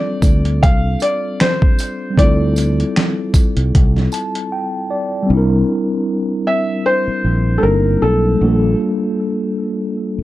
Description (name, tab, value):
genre	lo-fi hip hop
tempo	77 BPM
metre	4/4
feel	swing 56% on 16ths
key	unclear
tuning	A4 = 435 Hz
part	felt-muted upright piano	melody	0.0-8.8 s	A4 to F5	-19 LUFS	left 1 dB	tape echo
part	mellow tine electric piano	accompaniment	0.0-10.2 s	G3 to A5	-19 LUFS	equal	medium stereo tremolo, cassette tape
part	fingered electric bass	bass	0.2-10.2 s	G1 to D2	-16 LUFS	equal	none
part	dusty soul sampler-style drum kit	drums	0.2-4.5 s	finger snaps, hi-hat, kick drum, snare drum	-14 LUFS	equal	overdrive
part	tambourine	percussion	0.2-4.3 s	none	-32 LUFS	right 5 dB	none
room	light reverb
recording	dark, warm production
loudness	-14 LUFS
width	side -16 dB against mid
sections	0.0-5.3 A section; 5.3-10.2 B section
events	tine electric piano fill 3.7-5.3; break 4.5-5.3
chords	0.0 F69; 2.2 Dm11; 5.3 C9; 8.4 Gm9/Bb